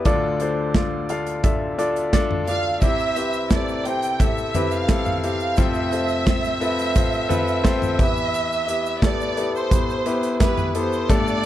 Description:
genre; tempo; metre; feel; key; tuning
piano-driven pop; 87 BPM; 4/4; straight; unclear; A4 = 440 Hz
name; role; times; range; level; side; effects
clear baby grand piano; accompaniment; 0.0-11.5 s; F1 to F5; -23 LUFS; left 2 dB; none
modern studio drum kit; drums; 0.1-11.5 s; hi-hat, kick drum, snare drum, toms; -22 LUFS; equal; none
warm symphonic violin section; melody; 2.5-11.5 s; B4 to G5; -24 LUFS; right 3 dB; none
egg shaker; percussion; 2.8-11.4 s; none; -45 LUFS; right 21 dB; none
room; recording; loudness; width
light reverb; none; -19 LUFS; side -12 dB against mid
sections
0.0-11.5 A section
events
none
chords
0.1 Dm; 2.8 C; 5.6 F; 8.0 Em

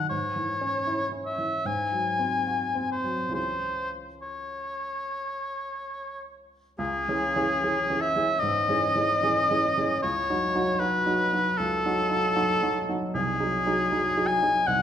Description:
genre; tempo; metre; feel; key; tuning
classical, romantic duo for oboe and grand piano; 67-80 BPM; 4/4; rubato; C# minor; A4 = 435 Hz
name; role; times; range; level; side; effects
clear oboe; melody; 0.0-14.8 s; G#4 to G#5; -25 LUFS; left 1 dB; none
warm baby grand piano; accompaniment; 0.0-14.8 s; B#1 to A4; -29 LUFS; right 1 dB; none
room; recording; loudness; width
wet recital hall reverb, RT60 1.4 s; recorded in a church or concert hall; -24 LUFS; side -9 dB against mid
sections
0.0-6.8 A section; 6.8-14.8 B section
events
none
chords
0.1 C#m/G#; 1.7 G#7; 3.4 C#m; 10.0 D#m7b5/C#; 13.1 G#7/B#

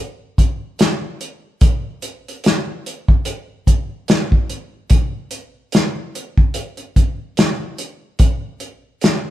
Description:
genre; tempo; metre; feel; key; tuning
R&B; 73 BPM; 4/4; swing 58% on 16ths; none; none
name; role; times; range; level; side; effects
warm soul drum kit; drums; 0.4-9.2 s; hi-hat, kick drum, snare drum; -15 LUFS; equal; none
room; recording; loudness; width
light reverb; band playing live in one room; -16 LUFS; side -14 dB against mid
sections
0.0-9.3 A section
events
none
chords
none

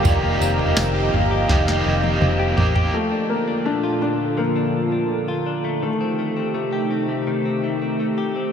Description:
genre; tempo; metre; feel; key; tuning
dream pop; 83 BPM; 4/4; straight; unclear; A4 = 440 Hz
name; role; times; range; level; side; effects
felt-muted upright piano; melody; 0.0-7.2 s; A3 to G5; -26 LUFS; left 2 dB; diffuse ambient delay
crunchy overdriven guitar; accompaniment; 0.0-3.0 s; F3 to G4; -27 LUFS; right 3 dB; tremolo, lush chorus
hollow soft pad; sustained chords; 0.0-8.5 s; Bb2 to Bb5; -24 LUFS; right 1 dB; chorus
direct-recorded clean electric guitar; arpeggios; 0.0-8.5 s; Eb3 to G4; -26 LUFS; left 4 dB; lush chorus, diffuse ambient delay
vintage muted fingered electric bass; bass; 0.0-2.9 s; F1 to A1; -22 LUFS; equal; none
soft vintage rhythm box; drums; 0.0-2.9 s; kick drum, snare drum, tambourine, toms; -22 LUFS; equal; none
room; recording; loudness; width
wet huge ambient reverb, RT60 8.9 s; dreamy mix soaked in reverb; -18 LUFS; side -7 dB against mid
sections
0.0-2.9 A section; 2.9-8.5 B section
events
drum fill 1.5-2.9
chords
0.1 F9sus4; 2.9 Bbmaj7; 5.8 Am7b5

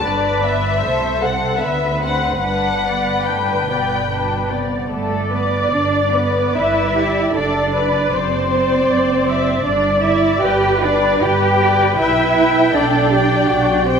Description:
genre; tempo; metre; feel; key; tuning
classical, slow romantic movement for string orchestra; 70-82 BPM; 3/4; rubato; G major; A4 = 439 Hz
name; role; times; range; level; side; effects
muted symphonic violin section; melody; 0.0-14.0 s; D5 to G5; -22 LUFS; left 4 dB; none
muted symphonic violin section; second line; 0.0-14.0 s; A3 to G5; -20 LUFS; left 2 dB; none
muted symphonic viola section; accompaniment; 0.0-14.0 s; F#4 to E5; -21 LUFS; right 1 dB; none
muted chamber double bass section; bass; 0.1-14.0 s; F#1 to D2; -23 LUFS; right 3 dB; none
muted symphonic cello section; bass; 0.1-14.0 s; G2 to G4; -20 LUFS; right 3 dB; none
room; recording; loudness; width
moderate concert hall reverb, RT60 2.4 s; minimal, uncompressed stereo recording; -14 LUFS; side -6 dB against mid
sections
0.0-4.9 A section; 4.9-14.0 B section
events
none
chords
0.1 G; 0.8 Am/C; 1.6 D13; 2.4 G; 7.4 D7/F#; 9.7 G; 12.0 G/B

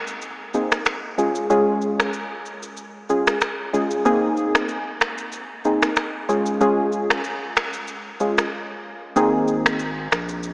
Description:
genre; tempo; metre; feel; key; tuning
afrobeats; 94 BPM; 4/4; swing 55% on 16ths; Db major; A4 = 440 Hz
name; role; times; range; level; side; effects
electronic shaker, rim click and finger snaps; drums; 0.1-10.5 s; none; -24 LUFS; equal; none
warm analog keys; accompaniment; 0.5-9.8 s; Ab3 to Ab4; -21 LUFS; equal; chorus
saturated sub bass; bass; 9.2-10.5 s; Ab1 to Bb1; -29 LUFS; equal; none
room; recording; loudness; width
wet plate reverb, RT60 3.6 s; dreamy mix soaked in reverb, small speaker sound; -19 LUFS; side -28 dB against mid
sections
0.0-9.2 A section; 9.2-10.5 B section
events
break 8.5-9.2; kick muted 9.2-10.5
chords
0.0 Abadd9; 1.2 Db; 4.1 Abadd9; 6.3 Db; 9.2 Abadd9

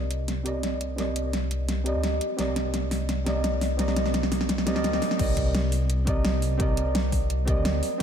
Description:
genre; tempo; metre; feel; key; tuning
liquid drum and bass; 171 BPM; 4/4; straight; C minor; A4 = 435 Hz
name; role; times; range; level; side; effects
deep mellow chord stab; accompaniment; 0.0-8.0 s; C4 to Eb5; -29 LUFS; right 1 dB; chorus, ping-pong delay
dark detuned saw bass; bass; 0.0-8.0 s; C2 to D2; -27 LUFS; equal; none
pop drum kit; drums; 0.1-8.0 s; crash cymbal, hi-hat, snare drum; -29 LUFS; equal; overdrive
electronic kick drum; drums; 5.2-8.0 s; none; -26 LUFS; equal; overdrive
room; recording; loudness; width
moderate lush hall reverb, RT60 1.7 s; dreamy mix soaked in reverb; -23 LUFS; side -8 dB against mid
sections
0.0-5.2 A section; 5.2-8.0 B section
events
build-up 0.0-5.2; drum fill 0.0-5.2; drop 5.2-8.0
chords
0.0 Cm7

